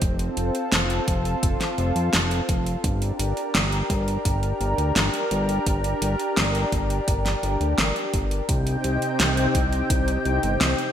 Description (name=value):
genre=synthwave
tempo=85 BPM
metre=4/4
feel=straight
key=G minor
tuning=A4 = 440 Hz
part: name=lush unison pad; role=sustained chords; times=0.0-10.9 s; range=C3 to G5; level=-25 LUFS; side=equal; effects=chorus, sidechain pumping
part: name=fat analog bass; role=bass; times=0.0-10.7 s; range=F1 to F2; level=-25 LUFS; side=equal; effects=none
part: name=electronic kick drum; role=drums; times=0.0-10.0 s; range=none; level=-26 LUFS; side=equal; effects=none
part: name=pop drum kit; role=drums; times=0.0-10.9 s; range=hi-hat, snare drum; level=-25 LUFS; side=equal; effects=gated reverb
room=moderate plate reverb, RT60 2.3 s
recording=bright 1980s-style digital production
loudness=-21 LUFS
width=side -9 dB against mid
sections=0.0-10.9 A section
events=none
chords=0.0 F; 2.8 Gm; 8.5 Cm